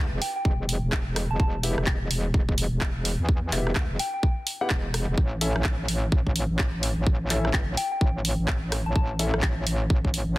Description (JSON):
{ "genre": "bass house", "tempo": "127 BPM", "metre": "4/4", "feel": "swing 61% on 16ths", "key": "unclear", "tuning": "A4 = 440 Hz", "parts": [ { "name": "metallic wobble bass", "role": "bass", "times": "0.0-10.4 s", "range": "E1 to E2", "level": "-27 LUFS", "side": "equal", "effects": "chorus, tube saturation, sidechain pumping" }, { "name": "soft synth bell", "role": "melody", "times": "0.2-4.2, 7.8-9.0 s", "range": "G5 to A5", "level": "-32 LUFS", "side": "left 1 dB", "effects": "chorus, phaser, digital delay" }, { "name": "garage drum kit", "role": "drums", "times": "0.2-10.3 s", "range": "handclaps, hi-hat, rim click", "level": "-30 LUFS", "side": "equal", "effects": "soft clipping on snare" }, { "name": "electronic kick drum", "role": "drums", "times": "0.5-10.1 s", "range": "none", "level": "-24 LUFS", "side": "equal", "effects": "none" }, { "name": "warm concert grand piano", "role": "stabs", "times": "1.6-9.3 s", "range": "B3 to F#5", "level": "-33 LUFS", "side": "left 2 dB", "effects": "sidechain pumping, digital delay" } ], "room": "little or no reverb", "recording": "dense, heavily limited modern master", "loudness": "-23 LUFS", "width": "side -18 dB against mid", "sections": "0.0-10.4 A section", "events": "none", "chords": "0.0 N.C.; 5.2 A5" }